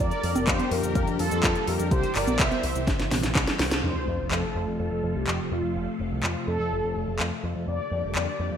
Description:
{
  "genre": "italo disco",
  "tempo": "125 BPM",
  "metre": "4/4",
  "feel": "straight",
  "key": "F major",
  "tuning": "A4 = 436 Hz",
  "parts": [
    { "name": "mellow synth brass", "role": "melody", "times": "0.0-8.6 s", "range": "F4 to E5", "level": "-30 LUFS", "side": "left 1 dB", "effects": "chorus, cassette tape, digital delay, shimmer reverb" },
    { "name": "phased string machine", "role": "sustained chords", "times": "0.0-8.6 s", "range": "Bb2 to D5", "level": "-32 LUFS", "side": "left 1 dB", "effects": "ensemble chorus, phaser, shimmer reverb" },
    { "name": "picked electric bass with an envelope filter", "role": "bass", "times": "0.0-8.6 s", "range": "F1 to F2", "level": "-30 LUFS", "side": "equal", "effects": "none" },
    { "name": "house drum kit", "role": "drums", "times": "0.1-8.2 s", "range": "cabasa, congas, handclaps, hi-hat, snare drum", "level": "-28 LUFS", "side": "equal", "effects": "overdrive, gated reverb" },
    { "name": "electronic kick drum", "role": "drums", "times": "0.5-3.5 s", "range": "none", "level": "-26 LUFS", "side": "equal", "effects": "overdrive" },
    { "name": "sub drop", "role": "sound effects", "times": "3.8-5.8 s", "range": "none", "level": "-37 LUFS", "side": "equal", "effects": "none" }
  ],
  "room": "moderate plate reverb, RT60 2.2 s",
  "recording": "bright 1980s-style digital production",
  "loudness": "-23 LUFS",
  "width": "side -8 dB against mid",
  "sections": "0.0-3.8 A section; 3.8-8.6 B section",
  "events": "drum fill 2.9-3.8; band accent 3.7; impact 3.8-5.8",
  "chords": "0.0 Gm/F; 1.9 C; 3.8 F; 7.7 Gm/F"
}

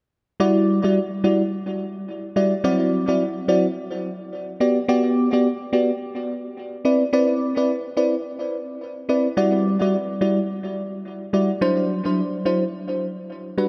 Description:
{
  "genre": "afrobeats",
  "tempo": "107 BPM",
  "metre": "4/4",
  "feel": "swing 58% on 16ths",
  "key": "E minor",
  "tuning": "A4 = 439 Hz",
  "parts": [
    { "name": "bell-like FM electric piano", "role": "solo", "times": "0.4-13.7 s", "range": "F#3 to D5", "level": "-22 LUFS", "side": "equal", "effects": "chorus, phaser, tape echo" }
  ],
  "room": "wet church reverb, RT60 3.4 s",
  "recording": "dreamy mix soaked in reverb",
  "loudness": "-22 LUFS",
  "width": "mono",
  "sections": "0.4-13.7 A section",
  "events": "none",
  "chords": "0.4 Em9; 2.6 D9/F#; 4.6 Gmaj7; 6.8 Cmaj9; 9.4 Em9; 11.6 D9/F#"
}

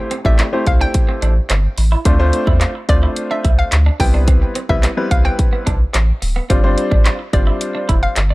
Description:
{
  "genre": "dance-pop",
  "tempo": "108 BPM",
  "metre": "4/4",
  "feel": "straight",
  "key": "C major",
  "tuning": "A4 = 440 Hz",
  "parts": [
    { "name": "hollow square pluck", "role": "melody", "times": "0.0-8.3 s", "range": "D5 to G5", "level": "-23 LUFS", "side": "equal", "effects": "chorus, tape echo" },
    { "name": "clear grand piano", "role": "accompaniment", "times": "0.0-8.1 s", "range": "G3 to D5", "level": "-21 LUFS", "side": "left 1 dB", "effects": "sidechain pumping" },
    { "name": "downlifter", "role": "sound effects", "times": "0.0-2.1 s", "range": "none", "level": "-42 LUFS", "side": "equal", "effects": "none" },
    { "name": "twelve-string electric guitar", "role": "riff", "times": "0.1-8.3 s", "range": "B3 to F4", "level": "-27 LUFS", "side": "right 4 dB", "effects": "lush chorus" },
    { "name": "house drum kit", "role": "drums", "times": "0.1-8.3 s", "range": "handclaps, hi-hat, kick drum", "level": "-16 LUFS", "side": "equal", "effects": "none" },
    { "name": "saturated sub bass", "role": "bass", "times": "0.2-8.3 s", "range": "D1 to E2", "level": "-15 LUFS", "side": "equal", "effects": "sidechain pumping" }
  ],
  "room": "digital ambience",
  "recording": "dry, gritty hardware recording",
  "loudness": "-13 LUFS",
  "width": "side -21 dB against mid",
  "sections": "0.0-8.3 A section",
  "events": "none",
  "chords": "0.0 Am7; 2.1 Dm7; 4.0 Cmaj7; 6.5 G7sus4"
}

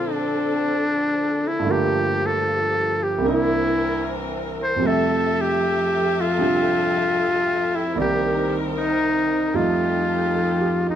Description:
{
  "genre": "jazz ballad",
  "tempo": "76 BPM",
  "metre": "4/4",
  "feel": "swing 69% on 8ths",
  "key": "F major",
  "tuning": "A4 = 440 Hz",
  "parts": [
    { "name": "trumpet with metal mute", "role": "melody", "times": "0.0-11.0 s", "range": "D4 to C5", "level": "-21 LUFS", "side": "left 1 dB", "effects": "none" },
    { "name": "clear concert grand piano", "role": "accompaniment", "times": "0.0-11.0 s", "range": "C2 to E5", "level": "-24 LUFS", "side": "right 3 dB", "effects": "none" },
    { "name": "warm studio string section", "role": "sustained chords", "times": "0.0-11.0 s", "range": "D3 to E5", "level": "-28 LUFS", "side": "left 1 dB", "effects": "none" }
  ],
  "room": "light reverb",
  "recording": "none",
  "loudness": "-19 LUFS",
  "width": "side -10 dB against mid",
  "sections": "0.0-11.0 A section",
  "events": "none",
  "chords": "0.0 Bbmaj9; 1.7 Gm7; 3.2 C7; 4.8 Fmaj9; 8.0 Cm7; 9.5 F9"
}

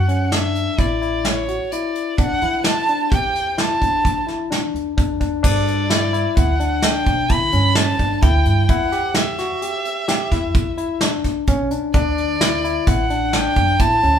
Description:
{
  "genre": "progressive instrumental, band music in an uneven meter",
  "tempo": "129 BPM",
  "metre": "7/4",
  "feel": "straight",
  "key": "E dorian",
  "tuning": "A4 = 443 Hz",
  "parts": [
    { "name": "dark violin", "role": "melody", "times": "0.0-14.2 s", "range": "C#5 to B5", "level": "-21 LUFS", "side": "right 1 dB", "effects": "none" },
    { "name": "barky tine electric piano", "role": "arpeggios", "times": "0.0-14.2 s", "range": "C#4 to G4", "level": "-23 LUFS", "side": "left 5 dB", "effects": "overdrive" },
    { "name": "upright bass", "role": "bass", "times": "0.0-14.2 s", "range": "A1 to E3", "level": "-22 LUFS", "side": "right 1 dB", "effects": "none" },
    { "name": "soft brush drum kit", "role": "drums", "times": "0.1-14.1 s", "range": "crash cymbal, hi-hat, kick drum, snare drum", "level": "-20 LUFS", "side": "right 1 dB", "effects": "none" }
  ],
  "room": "moderate large studio reverb, RT60 0.9 s",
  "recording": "band playing live in one room",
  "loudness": "-16 LUFS",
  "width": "side -8 dB against mid",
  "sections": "0.0-5.4 A section; 5.4-14.2 B section",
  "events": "none",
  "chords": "0.0 Bm7 (rootless); 2.2 Em11; 5.4 G5; 8.7 Em7; 11.9 D"
}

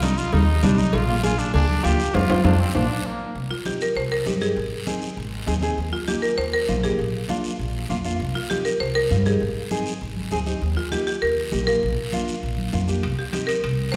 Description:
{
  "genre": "latin, cumbia",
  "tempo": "198 BPM",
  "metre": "4/4",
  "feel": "straight",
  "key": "C minor",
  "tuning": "A4 = 442 Hz",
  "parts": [
    { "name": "growling trumpet", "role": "second line", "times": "0.0-3.4 s", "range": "Bb3 to G4", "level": "-29 LUFS", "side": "equal", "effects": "none" },
    { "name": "nylon-string guitar", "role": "accompaniment", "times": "0.0-14.0 s", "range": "G3 to Ab4", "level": "-29 LUFS", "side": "equal", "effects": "none" },
    { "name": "upright bass", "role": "bass", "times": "0.0-14.0 s", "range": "Ab1 to G2", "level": "-28 LUFS", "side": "equal", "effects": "none" },
    { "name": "congas", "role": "percussion", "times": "0.0-14.0 s", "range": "none", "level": "-31 LUFS", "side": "equal", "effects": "none" },
    { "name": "cowbell and timbales", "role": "percussion", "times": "0.0-2.8, 13.0-14.0 s", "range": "none", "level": "-32 LUFS", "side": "equal", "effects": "none" },
    { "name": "guiro", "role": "percussion", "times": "0.0-14.0 s", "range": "none", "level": "-38 LUFS", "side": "equal", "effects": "none" },
    { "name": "buzzing marimba with hard mallets", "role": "melody", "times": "3.5-14.0 s", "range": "F4 to C5", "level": "-27 LUFS", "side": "equal", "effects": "none" }
  ],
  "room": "wet scoring stage reverb, RT60 1.9 s",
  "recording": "recorded in a church or concert hall",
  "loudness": "-23 LUFS",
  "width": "mono",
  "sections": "0.0-3.4 A section; 3.4-14.0 B section",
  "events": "band accent 2.1-3.4; drum fill 2.8-3.4",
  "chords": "0.0 Cm; 0.9 Bb; 2.1 Fm; 2.8 Bb; 3.4 Cm; 4.6 Ab; 5.8 Eb; 7.0 Bb; 8.2 Cm; 9.4 Ab; 10.6 Eb; 11.8 Bb; 13.0 Cm"
}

